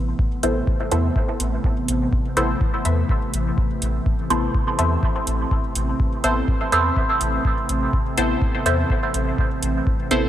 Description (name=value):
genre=dub techno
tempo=124 BPM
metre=4/4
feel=straight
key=A minor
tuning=A4 = 440 Hz
part: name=warbly tape-like pad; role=sustained chords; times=0.0-10.3 s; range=C3 to C4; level=-27 LUFS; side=equal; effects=chorus, built-in reverb, phaser, sidechain pumping
part: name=soft dub sub bass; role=bass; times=0.0-10.3 s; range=A1 to E2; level=-23 LUFS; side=equal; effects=sidechain pumping
part: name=electronic kick drum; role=drums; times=0.2-10.0 s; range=none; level=-22 LUFS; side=equal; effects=none
part: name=filtered dub chord stab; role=stabs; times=0.4-10.2 s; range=B3 to C5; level=-23 LUFS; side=equal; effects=phaser, sidechain pumping, dub echo
part: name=electronic hi-hat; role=drums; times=0.4-10.2 s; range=none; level=-27 LUFS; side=right 2 dB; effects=none
part: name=filtered dub chord stab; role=riff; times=0.9-8.8 s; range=A4 to E5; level=-36 LUFS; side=right 1 dB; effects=wide subtle chorus, sidechain pumping, dub echo
room=moderate cathedral reverb, RT60 6.8 s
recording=dreamy mix soaked in reverb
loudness=-19 LUFS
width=side -12 dB against mid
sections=0.0-10.3 A section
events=none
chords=0.0 Amadd9